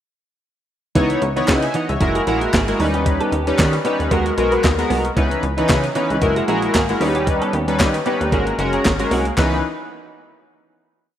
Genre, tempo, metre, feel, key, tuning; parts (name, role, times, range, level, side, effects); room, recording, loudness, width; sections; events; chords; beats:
early-eighties boogie funk; 114 BPM; 4/4; swing 56% on 16ths; C# dorian; A4 = 438 Hz
chorused polysynth; accompaniment; 1.0-9.6 s; E3 to G#5; -19 LUFS; left 1 dB
clean electric guitar; riff; 1.0-9.6 s; E3 to B4; -26 LUFS; right 3 dB; ensemble chorus
plucky analog bass; bass; 1.0-9.6 s; F#1 to D#3; -23 LUFS; equal
crisp 8-bit digital drum machine; drums; 1.0-9.5 s; handclaps, hi-hat, kick drum, snare drum; -21 LUFS; equal
group handclap; percussion; 1.5-9.6 s; -31 LUFS; left 2 dB
moderate lush hall reverb, RT60 1.9 s, digital ambience; rough home demo mix; -16 LUFS; side -10 dB against mid
1.0-9.4 verse; 9.4-11.2 final chord
1.0 C#m9; 2.0 F#9; 2.8 D#aug7; 4.1 G#m9; 5.2 C#m9; 6.2 F#9; 7.0 D#aug7; 8.3 G#9sus4; 9.4 C#m9
| 0.95 1.48 2.01 2.53 | 3.06 3.59 4.11 4.64 | 5.17 5.69 6.22 6.75 | 7.27 7.80 8.32 8.85 | 9.38